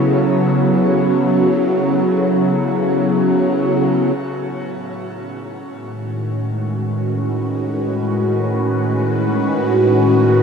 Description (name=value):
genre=ambient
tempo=free time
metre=none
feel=none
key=unclear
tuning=A4 = 440 Hz
part: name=evolving wavetable pad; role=sustained chords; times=0.0-10.4 s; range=A2 to B4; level=-15 LUFS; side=equal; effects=phaser, built-in reverb
part: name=soft synth bell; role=arpeggios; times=0.0-4.2 s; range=none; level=barely audible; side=none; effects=none
room=wet shimmer reverb, RT60 8.0 s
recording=cassette tape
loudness=-15 LUFS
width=side -6 dB against mid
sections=0.0-4.2 A section; 4.2-10.4 B section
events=fade-in on ambient pad 4.2-10.4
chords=0.0 F#m7; 4.2 G#m7/A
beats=free time